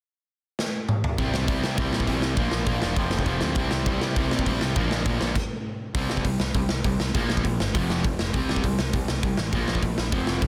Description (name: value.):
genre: punk rock.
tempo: 201 BPM.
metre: 4/4.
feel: straight.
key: C mixolydian.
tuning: A4 = 440 Hz.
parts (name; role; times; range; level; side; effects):
big rock drum kit; drums; 0.6-10.5 s; crash cymbal, hi-hat, kick drum, snare drum, toms; -28 LUFS; equal; none.
crunchy overdriven guitar; riff; 1.2-10.5 s; F2 to F4; -31 LUFS; equal; none.
distorted electric guitar; riff; 1.2-10.5 s; F2 to C4; -33 LUFS; equal; distortion.
fuzz picked electric bass; bass; 1.2-10.5 s; E1 to C3; -32 LUFS; equal; overdrive.
room: little or no reverb.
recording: dense, heavily limited modern master.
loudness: -25 LUFS.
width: mono.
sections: 0.0-1.2 A section; 1.2-6.0 B section; 6.0-10.5 C section.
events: drum fill 0.6-1.2; stop 5.4-6.0.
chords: 0.0 N.C.; 1.2 C; 2.4 Bb; 3.0 F; 3.6 C; 4.8 Bb; 5.4 N.C.; 6.0 C5; 7.2 Bb5; 7.7 F5; 8.3 C5; 9.5 Bb5.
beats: 0.29 0.59 0.89 | 1.18 1.48 1.78 2.08 | 2.38 2.67 2.97 3.27 | 3.57 3.87 4.17 4.47 | 4.76 5.06 5.36 5.66 | 5.96 6.26 6.55 6.85 | 7.15 7.45 7.75 8.05 | 8.34 8.64 8.94 9.24 | 9.54 9.83 10.13 10.43.